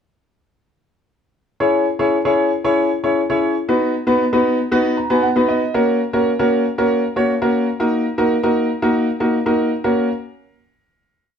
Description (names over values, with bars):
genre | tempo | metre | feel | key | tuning
soul | 117 BPM | 4/4 | straight | F# mixolydian | A4 = 445 Hz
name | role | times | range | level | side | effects
clear concert grand piano | solo | 1.6-10.1 s | A#3 to A#5 | -15 LUFS | equal | none
room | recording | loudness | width
moderate studio reverb, RT60 0.8 s | band playing live in one room | -15 LUFS | side -7 dB against mid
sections
1.6-9.8 pre-chorus; 9.8-11.4 final chord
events
grand piano fill 4.7-5.7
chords
1.6 C#m; 3.7 B; 5.7 F#; 7.8 D#m; 9.8 F#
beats
| 1.60 2.12 2.64 3.16 | 3.68 4.20 4.71 5.23 | 5.75 6.26 6.77 7.29 | 7.80 8.31 8.82 9.33 | 9.84